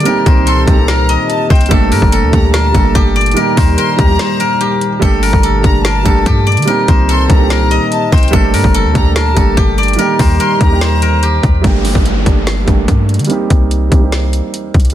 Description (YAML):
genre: hip hop, trap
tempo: 145 BPM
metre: 4/4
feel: half-time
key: G minor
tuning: A4 = 445 Hz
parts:
  - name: steel-string zither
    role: melody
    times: 0.0-13.6 s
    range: G4 to Eb5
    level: -16 LUFS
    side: left 2 dB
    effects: ping-pong delay
  - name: dark concert grand piano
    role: accompaniment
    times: 0.0-14.9 s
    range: Eb3 to G4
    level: -17 LUFS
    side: right 5 dB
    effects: low-pass filter
  - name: dark analog pad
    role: sustained chords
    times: 0.0-11.6 s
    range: Bb2 to A4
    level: -22 LUFS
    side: left 3 dB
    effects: chorus
  - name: clean 808-style bass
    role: bass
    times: 0.0-14.9 s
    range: F#1 to D3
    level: -13 LUFS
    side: equal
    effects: none
  - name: trap drum kit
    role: drums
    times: 0.0-14.9 s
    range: hi-hat, kick drum, snare drum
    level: -13 LUFS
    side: equal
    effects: none
  - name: rich studio violin section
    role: second line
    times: 0.5-11.2 s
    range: G5 to C6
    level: -22 LUFS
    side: left 2 dB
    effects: ping-pong delay
  - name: downlifter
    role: sound effects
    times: 11.6-14.9 s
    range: none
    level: -24 LUFS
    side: equal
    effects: none
room: studio reverb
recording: dense, heavily limited modern master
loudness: -9 LUFS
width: side -12 dB against mid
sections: 0.0-11.6 A section; 11.6-14.9 B section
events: break 4.2-5.0; filter sweep on grand piano 11.6-14.9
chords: 0.1 Cm7; 1.7 Gmadd9; 3.4 Eb; 5.0 Gmadd9; 6.7 Cm7; 8.3 Gmadd9; 10.0 Eb; 11.6 Gmadd9; 13.3 Cm7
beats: | 0.06 0.47 0.88 1.30 | 1.71 2.12 2.54 2.95 | 3.37 3.78 4.19 4.61 | 5.02 5.43 5.85 6.26 | 6.67 7.09 7.50 7.92 | 8.33 8.74 9.16 9.57 | 9.99 10.40 10.81 11.23 | 11.64 12.05 12.47 12.88 | 13.30 13.71 14.12 14.54